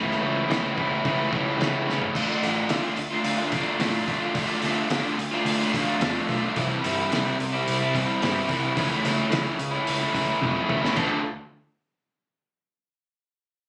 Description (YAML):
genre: indie rock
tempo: 109 BPM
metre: 4/4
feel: straight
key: D minor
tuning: A4 = 440 Hz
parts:
  - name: crunchy overdriven guitar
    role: riff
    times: 0.0-11.2 s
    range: C3 to A4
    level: -27 LUFS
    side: equal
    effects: none
  - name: fuzz picked electric bass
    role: bass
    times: 0.0-11.2 s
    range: G1 to A2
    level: -33 LUFS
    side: equal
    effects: overdrive
  - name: cloth-damped thuddy drum kit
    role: drums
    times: 0.1-11.1 s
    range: crash cymbal, hi-hat, kick drum, snare drum, toms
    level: -32 LUFS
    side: equal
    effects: none
room: light reverb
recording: recorded on a phone in the room, studio reverb, compression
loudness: -25 LUFS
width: mono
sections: 0.0-2.2 A section; 2.2-11.0 B section; 11.0-13.2 C section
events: drum fill 1.9, 10.4-11.0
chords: 0.0 A/C#; 2.2 Dm; 6.6 C; 8.8 A/C#; 11.0 Dm